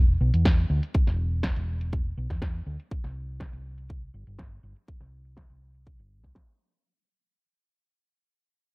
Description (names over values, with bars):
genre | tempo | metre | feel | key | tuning
nu-disco, nu disco | 122 BPM | 4/4 | straight | unclear | A4 = 441 Hz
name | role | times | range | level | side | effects
hollow-body short-scale fingered electric bass | bass | 0.0-6.3 s | E1 to E2 | -27 LUFS | equal | none
house drum kit | drums | 0.3-6.8 s | hi-hat, snare drum | -33 LUFS | equal | low-pass filter on hats, low-pass filter on snare
electronic kick drum | drums | 0.5-6.5 s | none | -24 LUFS | equal | none
room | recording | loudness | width
digital ambience | dry, gritty hardware recording | -24 LUFS | side -33 dB against mid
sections
0.0-6.8 A section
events
fade-out 0.0-6.8; filter sweep on drum 0.0-6.8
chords
none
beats
0.45 | 0.94 1.43 1.93 2.42 | 2.91 3.40 3.89 4.38 | 4.88 5.37 5.86 6.35